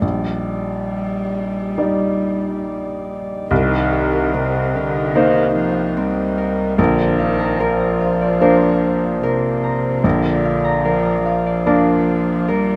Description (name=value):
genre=neoclassical piano and strings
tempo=73 BPM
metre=4/4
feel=rubato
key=C minor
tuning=A4 = 438 Hz
part: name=warm cello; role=second line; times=0.0-12.8 s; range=C3 to G3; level=-24 LUFS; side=equal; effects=none
part: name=clear baby grand piano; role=accompaniment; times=0.0-12.8 s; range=Bb1 to D5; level=-21 LUFS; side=equal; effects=none
part: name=pedal harmonium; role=sustained chords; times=0.0-12.8 s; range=D4 to Eb5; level=-26 LUFS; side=equal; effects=none
part: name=Celtic harp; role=arpeggios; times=3.5-12.8 s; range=C4 to Bb5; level=-25 LUFS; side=equal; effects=none
room=light reverb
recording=none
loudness=-18 LUFS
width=mono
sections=0.0-3.5 A section; 3.5-12.8 A section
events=none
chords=0.0 Ebmaj7/Bb; 3.5 Cm7; 6.8 Bbadd9; 10.0 Bb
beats=| 0.02 0.91 1.78 2.65 | 3.51 4.33 5.15 5.97 | 6.78 7.60 8.41 9.22 | 10.04 10.85 11.66 12.48